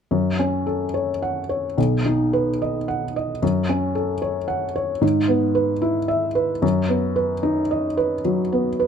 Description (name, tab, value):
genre	classical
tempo	74 BPM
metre	4/4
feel	rubato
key	F# dorian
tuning	A4 = 440 Hz
part	felt-muted upright piano	accompaniment	0.1-8.9 s	B1 to F#5	-19 LUFS	equal	none
room	light reverb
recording	close, detailed microphones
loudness	-19 LUFS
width	side -7 dB against mid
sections	0.1-8.9 A section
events	none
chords	0.1 F#m; 1.8 B; 3.4 F#m; 5.0 E/G#; 6.6 B/F#